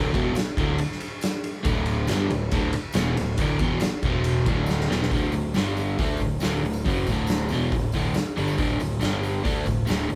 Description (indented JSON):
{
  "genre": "garage rock duo or trio",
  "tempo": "138 BPM",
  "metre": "4/4",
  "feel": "straight",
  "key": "D major",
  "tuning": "A4 = 440 Hz",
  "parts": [
    { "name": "crunchy overdriven guitar", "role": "riff", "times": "0.0-10.2 s", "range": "D2 to D4", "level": "-27 LUFS", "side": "equal", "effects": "none" },
    { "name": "fuzz picked electric bass", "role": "bass", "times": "0.0-10.2 s", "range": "D1 to D2", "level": "-32 LUFS", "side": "equal", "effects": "overdrive" },
    { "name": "oversized low-tuned drum kit", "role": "drums", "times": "0.1-10.2 s", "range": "hi-hat, kick drum, ride cymbal, snare drum", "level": "-29 LUFS", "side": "equal", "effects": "none" },
    { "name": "tambourine", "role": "percussion", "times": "0.3-10.0 s", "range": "none", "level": "-48 LUFS", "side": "equal", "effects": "none" }
  ],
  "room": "moderate large studio reverb, RT60 1.1 s",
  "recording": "band playing live in one room",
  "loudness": "-25 LUFS",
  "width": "mono",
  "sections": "0.0-5.1 A section; 5.1-10.2 B section",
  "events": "drum fill 4.7-5.1",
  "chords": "0.0 D5; 4.0 E5; 4.5 D5; 5.5 G5; 6.0 D; 9.0 G5; 9.4 D5"
}